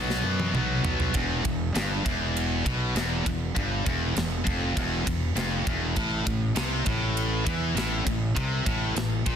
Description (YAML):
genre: heavy metal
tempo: 100 BPM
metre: 4/4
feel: straight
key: E minor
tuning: A4 = 441 Hz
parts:
  - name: heavy high-gain guitar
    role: riff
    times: 0.0-9.4 s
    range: E2 to B3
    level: -27 LUFS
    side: equal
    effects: distortion
  - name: fuzz fingered electric bass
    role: bass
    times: 0.0-9.4 s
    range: E1 to F#2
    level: -30 LUFS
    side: equal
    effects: overdrive
  - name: tight metal drum kit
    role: drums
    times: 0.1-9.4 s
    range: kick drum, ride cymbal, snare drum, toms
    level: -30 LUFS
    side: equal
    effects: none
room: studio reverb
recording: dense, heavily limited modern master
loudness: -24 LUFS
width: side -8 dB against mid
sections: 0.0-1.1 A section; 1.1-9.4 B section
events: drum fill 0.0-1.1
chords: 0.0 B5; 1.1 Em; 6.0 A5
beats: 0.54 | 1.15 1.75 2.35 2.96 | 3.56 4.16 4.76 5.36 | 5.96 6.57 7.17 7.77 | 8.37 8.97